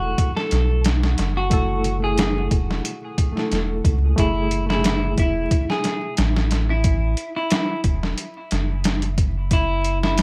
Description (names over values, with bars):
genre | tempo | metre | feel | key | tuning
trip hop | 90 BPM | 4/4 | swing 53% on 16ths | F# minor | A4 = 438 Hz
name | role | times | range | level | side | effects
clean electric guitar | melody | 0.0-10.2 s | E4 to A4 | -28 LUFS | equal | dub echo
reed electric piano | accompaniment | 0.0-6.9 s | A3 to A4 | -30 LUFS | equal | fast tremolo, tape echo
soft dub sub bass | bass | 0.0-10.2 s | E1 to C#2 | -24 LUFS | equal | none
trip hop sampler-style drum kit | drums | 0.2-10.2 s | hi-hat, kick drum, snare drum | -24 LUFS | equal | overdrive
room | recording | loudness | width
light reverb | vinyl crackle | -21 LUFS | mono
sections
0.0-10.2 A section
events
filter sweep on reed electric piano 0.0-6.8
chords
0.0 F#m7